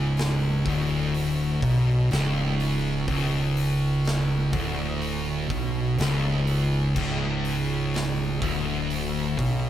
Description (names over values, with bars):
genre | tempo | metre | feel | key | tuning
stoner and doom metal | 62 BPM | 4/4 | straight | unclear | A4 = 441 Hz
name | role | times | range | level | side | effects
thick fuzz guitar | riff | 0.0-9.7 s | C#2 to B2 | -26 LUFS | left 3 dB | distortion
thick fuzz guitar | riff | 0.0-9.7 s | C#2 to B2 | -26 LUFS | right 4 dB | distortion
growling picked electric bass | bass | 0.0-9.7 s | C#1 to B1 | -32 LUFS | equal | overdrive
big rock drum kit | drums | 0.2-9.6 s | crash cymbal, hi-hat, kick drum, snare drum | -33 LUFS | equal | none
room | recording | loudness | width
light reverb | band playing live in one room | -22 LUFS | side -11 dB against mid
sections
0.0-9.7 A section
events
none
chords
0.0 C#5